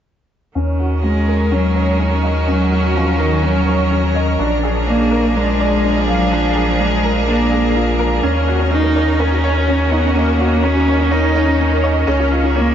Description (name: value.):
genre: electronica.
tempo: 125 BPM.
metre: 4/4.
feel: straight.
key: Eb minor.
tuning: A4 = 443 Hz.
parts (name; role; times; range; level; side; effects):
clear string quartet; sustained chords; 0.6-12.7 s; Eb3 to Bb4; -21 LUFS; right 1 dB; none.
clear upright piano; riff; 0.6-12.7 s; Db4 to F5; -20 LUFS; equal; ensemble chorus, low-pass filter, analog delay.
warm sub bass; bass; 0.6-12.7 s; Bb1 to Eb2; -18 LUFS; equal; none.
dark cello; melody; 1.0-12.7 s; Eb3 to Eb4; -18 LUFS; equal; analog delay.
wide unison pluck; arpeggios; 8.2-12.6 s; Db4 to Db5; -26 LUFS; equal; none.
room: wet huge ambient reverb, RT60 7.7 s.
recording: dreamy mix soaked in reverb, nothing above 7.7 kHz.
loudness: -13 LUFS.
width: side -9 dB against mid.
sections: 0.6-12.7 A section.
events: filter sweep on upright piano 0.6-12.7.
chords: 0.6 Ebm7; 4.4 Bb7; 8.2 Ebm7; 12.1 Dbadd9.